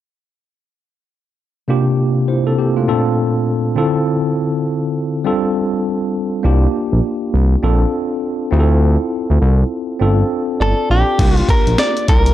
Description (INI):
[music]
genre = R&B, new jack swing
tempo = 101 BPM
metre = 4/4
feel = swing 61% on 16ths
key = unclear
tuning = A4 = 439 Hz
[part]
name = tine electric piano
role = accompaniment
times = 1.7-12.3 s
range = Bb2 to D5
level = -17 LUFS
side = equal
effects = medium stereo tremolo
[part]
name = smooth synth bass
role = bass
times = 6.4-12.3 s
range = G1 to D2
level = -13 LUFS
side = equal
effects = none
[part]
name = direct-recorded clean electric guitar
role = melody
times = 10.6-12.3 s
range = G4 to D5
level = -17 LUFS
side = equal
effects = none
[part]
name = breakbeat sampler-style drum kit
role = drums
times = 11.2-12.3 s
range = crash cymbal, hi-hat, kick drum, snare drum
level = -14 LUFS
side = equal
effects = none
[sound]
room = little or no reverb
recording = dark, warm production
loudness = -14 LUFS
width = side -12 dB against mid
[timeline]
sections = 1.7-11.2 A section; 11.2-12.3 B section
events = tine electric piano fill 10.3-11.2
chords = 1.7 C9sus4; 2.9 Bbmaj7; 3.8 Dm9; 5.3 G9sus4; 6.4 C9sus4; 7.6 Bbmaj7; 8.5 Dm9; 10.0 G9sus4; 11.2 C9sus4